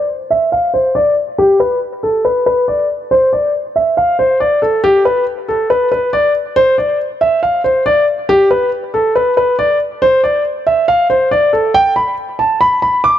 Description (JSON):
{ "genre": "hip hop", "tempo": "139 BPM", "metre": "4/4", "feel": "half-time", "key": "unclear", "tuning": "A4 = 440 Hz", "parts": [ { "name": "dark grand piano", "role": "solo", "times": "0.0-13.2 s", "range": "G4 to D6", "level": "-11 LUFS", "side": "equal", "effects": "low-pass filter, analog delay" } ], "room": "light reverb, small room ambience", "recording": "dry, gritty hardware recording", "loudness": "-11 LUFS", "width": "side -11 dB against mid", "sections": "0.0-11.7 A section; 11.7-13.2 B section", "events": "filter sweep on grand piano 0.0-4.8", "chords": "none", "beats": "0.09 0.52 0.95 | 1.38 1.81 2.25 2.68 | 3.11 3.54 3.97 4.41 | 4.84 5.27 5.70 6.13 | 6.56 7.00 7.43 7.86 | 8.29 8.72 9.15 9.59 | 10.02 10.45 10.88 11.31 | 11.74 12.18 12.61 13.04" }